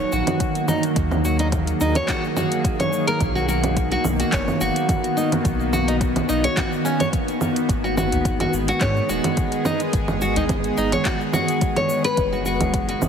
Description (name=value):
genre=organic downtempo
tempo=107 BPM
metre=4/4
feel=swing 54% on 16ths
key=unclear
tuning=A4 = 438 Hz
part: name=bowed-like drone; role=sustained chords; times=0.0-13.1 s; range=C#3 to G#4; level=-24 LUFS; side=equal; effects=built-in reverb, sidechain pumping
part: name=nylon-string guitar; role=arpeggios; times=0.0-13.0 s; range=C#4 to C#5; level=-24 LUFS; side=left 1 dB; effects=ping-pong delay
part: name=warm sub bass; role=bass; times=0.0-13.1 s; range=D#1 to G#2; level=-26 LUFS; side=equal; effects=sidechain pumping
part: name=bronze singing bowl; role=texture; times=0.0-13.1 s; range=D#4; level=-37 LUFS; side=right 3 dB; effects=none
part: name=deep house drum kit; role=drums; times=0.1-13.1 s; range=congas, handclaps, hi-hat, shaker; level=-26 LUFS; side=right 2 dB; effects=overdrive
part: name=electronic kick drum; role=drums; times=0.4-12.9 s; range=none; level=-24 LUFS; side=equal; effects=overdrive
part: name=udu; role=percussion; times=8.1-12.7 s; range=none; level=-28 LUFS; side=equal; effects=none
room=moderate lush hall reverb, RT60 1.7 s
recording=heavily compressed radio sound, multiband compression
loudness=-18 LUFS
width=side -7 dB against mid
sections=0.0-13.1 A section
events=none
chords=0.0 D#m; 3.2 Bmaj7; 7.7 G#m; 12.2 F#add9